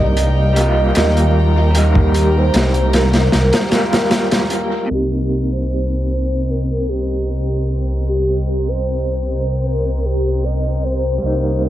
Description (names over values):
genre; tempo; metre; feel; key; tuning
trip hop; 76 BPM; 4/4; straight; C minor; A4 = 438 Hz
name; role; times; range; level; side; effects
pure breathy sine lead; melody; 0.0-11.7 s; G4 to Eb5; -22 LUFS; equal; analog chorus, tape echo
electric guitar through a small old amp; accompaniment; 0.0-11.7 s; C3 to F4; -22 LUFS; right 1 dB; tremolo, tape echo
rich studio violin section; sustained chords; 0.0-11.7 s; Eb4 to Eb6; -30 LUFS; equal; none
dark detuned saw bass; bass; 0.0-11.7 s; C2 to Eb2; -17 LUFS; equal; none
flickering grainy texture; texture; 0.0-11.7 s; G3 to C5; -30 LUFS; equal; none
crunchy breakbeat drum kit; drums; 0.2-4.7 s; hi-hat, kick drum, snare drum; -18 LUFS; equal; tape echo
room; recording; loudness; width
small room ambience; echo-heavy mix, vinyl crackle, low-pass filter; -14 LUFS; side -13 dB against mid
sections
0.0-4.9 A section; 4.9-11.7 B section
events
break 3.3-4.9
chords
0.0 Cm7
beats
0.17 0.96 | 1.75 2.54 3.33 4.12 | 4.90 5.69 6.48 7.27 | 8.06 8.85 9.64 10.43 | 11.22